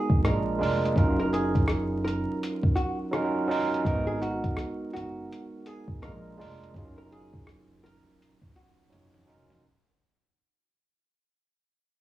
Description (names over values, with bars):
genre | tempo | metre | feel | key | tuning
lo-fi hip hop | 83 BPM | 4/4 | swing 63% on 16ths | Eb minor | A4 = 440 Hz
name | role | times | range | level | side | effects
archtop guitar, miked and amplified | melody | 0.0-9.1 s | Gb4 to Bb4 | -35 LUFS | equal | low-pass filter, cassette tape, analog delay, plate reverb
barky tine electric piano | accompaniment | 0.0-9.7 s | Gb3 to Db5 | -29 LUFS | right 2 dB | cassette tape, low-pass filter
upright bass | bass | 0.1-9.6 s | F1 to Bb1 | -31 LUFS | equal | none
lo-fi sampler-style drum kit | drums | 0.1-9.6 s | hi-hat, kick drum, rim click, snare drum | -27 LUFS | equal | overdrive, cassette tape
room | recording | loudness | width
moderate booth ambience, RT60 0.2 s | home recording on cassette, vinyl crackle, studio reverb | -24 LUFS | side -14 dB against mid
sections
0.0-9.6 A section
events
fade-out 0.0-9.6; drum fill 8.9-9.6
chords
0.2 Bb7; 1.0 Ebm7/Gb; 3.8 Abm7; 6.0 Bb7; 6.7 Ebm7/Gb